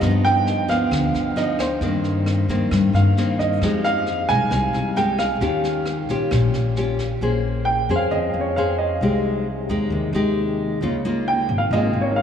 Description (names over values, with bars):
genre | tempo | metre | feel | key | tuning
bossa nova | 133 BPM | 4/4 | straight | unclear | A4 = 440 Hz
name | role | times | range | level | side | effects
dark baby grand piano | melody | 0.0-12.2 s | C5 to Ab5 | -24 LUFS | right 2 dB | none
nylon-string guitar | accompaniment | 0.0-12.2 s | G2 to C5 | -22 LUFS | left 2 dB | none
upright bass | bass | 0.0-12.2 s | Ab1 to G2 | -24 LUFS | equal | none
jazz brush drum kit | drums | 0.0-7.0 s | kick drum, rim click, snare drum | -32 LUFS | right 1 dB | none
room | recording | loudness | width
wet cathedral reverb, RT60 5.6 s | in a vast, echoing space, small room reverb | -18 LUFS | side -8 dB against mid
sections
0.0-7.2 A section; 7.2-12.2 B section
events
none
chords
0.0 G7b13; 1.8 Cm7/G; 3.6 Fm9; 5.4 Eb9; 7.2 Bbm9; 9.0 Abmaj7/C; 10.8 Db69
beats
| 0.02 0.47 0.92 1.36 | 1.81 2.26 2.71 3.16 | 3.61 4.06 4.51 4.96 | 5.41 5.86 6.31 6.76 | 7.21 7.66 8.11 8.56 | 9.01 9.46 9.91 10.36 | 10.81 11.26 11.71 12.16